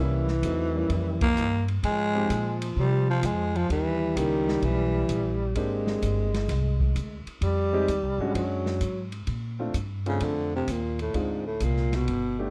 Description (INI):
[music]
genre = jazz, small-group swing and bop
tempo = 129 BPM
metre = 4/4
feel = swing 68% on 8ths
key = Bb major from 9.3 s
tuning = A4 = 440 Hz
[part]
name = breathy tenor saxophone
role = second line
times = 0.0-9.1 s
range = E3 to Ab3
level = -32 LUFS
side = equal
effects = none
[part]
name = warm upright piano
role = accompaniment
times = 0.0-12.5 s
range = Gb3 to G4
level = -34 LUFS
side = equal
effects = none
[part]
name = upright bass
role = bass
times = 0.0-12.5 s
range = G1 to C3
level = -31 LUFS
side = equal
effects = none
[part]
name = open jazz drum kit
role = drums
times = 0.3-12.2 s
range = hi-hat, kick drum, ride cymbal, snare drum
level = -36 LUFS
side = equal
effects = none
[part]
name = growling baritone saxophone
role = melody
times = 1.2-5.4, 10.1-12.4 s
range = Ab2 to Bb3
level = -30 LUFS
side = equal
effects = slapback echo
[sound]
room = little or no reverb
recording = dry, close 1970s-style studio recording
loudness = -27 LUFS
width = mono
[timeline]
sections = 0.0-9.3 A section; 9.3-12.5 B section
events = band accent 1.1; baritone saxophone solo 9.3-12.5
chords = 0.0 C7b9; 1.8 Fm; 3.7 Eb7b9; 5.6 Abmaj9#11; 7.4 Fm7; 8.4 Dmaj7#11/F#; 9.3 Bbmaj7; 11.1 Dm7b5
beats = 0.43 0.90 1.36 | 1.83 2.30 2.76 3.23 | 3.70 4.16 4.63 5.09 | 5.56 6.02 6.49 6.96 | 7.42 7.89 8.35 8.82 | 9.28 9.75 10.21 10.68 | 11.15 11.61 12.08